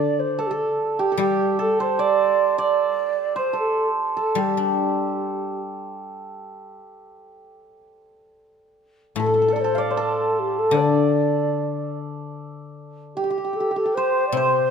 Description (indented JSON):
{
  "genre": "chinese traditional, Chinese chamber ensemble",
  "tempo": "75 BPM",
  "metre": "2/4",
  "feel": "rubato",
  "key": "D yu mode",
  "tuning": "A4 = 439 Hz",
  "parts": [
    { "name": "mellow hollow xiao", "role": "melody", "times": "0.0-5.6, 9.2-14.7 s", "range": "G4 to D5", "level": "-22 LUFS", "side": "right 2 dB", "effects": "none" },
    { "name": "hammered dulcimer", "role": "second line", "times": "0.0-14.7 s", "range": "G4 to F5", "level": "-25 LUFS", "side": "right 3 dB", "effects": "none" },
    { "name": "guzheng", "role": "accompaniment", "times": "0.0-14.7 s", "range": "A2 to D4", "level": "-25 LUFS", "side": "left 8 dB", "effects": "none" }
  ],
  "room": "moderate recital hall reverb, RT60 1.8 s",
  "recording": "close, detailed microphones",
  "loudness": "-19 LUFS",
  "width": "side -6 dB against mid",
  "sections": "0.0-12.3 A section; 12.3-14.7 B section",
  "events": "none",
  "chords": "none"
}